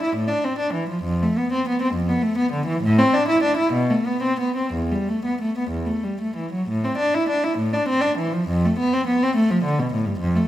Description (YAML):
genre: classical, baroque-style suite movement for unaccompanied cello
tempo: 58-70 BPM (dotted quarters)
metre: 6/8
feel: rubato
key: E minor, A minor from 6.7 s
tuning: A4 = 440 Hz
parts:
  - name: warm cello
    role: solo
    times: 0.0-10.5 s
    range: E2 to E4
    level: -19 LUFS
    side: equal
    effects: none
room: moderate recital hall reverb, RT60 1.6 s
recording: none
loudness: -19 LUFS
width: side -13 dB against mid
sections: 0.0-6.7 A section; 6.7-10.5 A section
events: none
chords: none